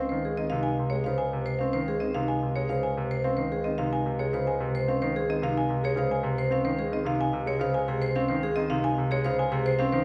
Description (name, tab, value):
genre	classical, minimalist pattern music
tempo	110 BPM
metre	3/4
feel	straight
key	Db major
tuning	A4 = 439 Hz
part	marimba with hard mallets	melody	0.0-10.0 s	C5 to Ab5	-34 LUFS	equal	none
part	clear grand piano	accompaniment	0.0-10.0 s	C3 to C4	-32 LUFS	equal	none
part	vibraphone with medium mallets	arpeggios	0.0-10.0 s	C4 to C5	-32 LUFS	equal	none
part	warm bass clarinet	bass	0.0-10.0 s	Db2	-37 LUFS	equal	none
room	wet scoring stage reverb, RT60 1.6 s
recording	heard from further back in the room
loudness	-27 LUFS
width	mono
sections	0.0-10.0 A section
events	none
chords	0.0 Dbmaj7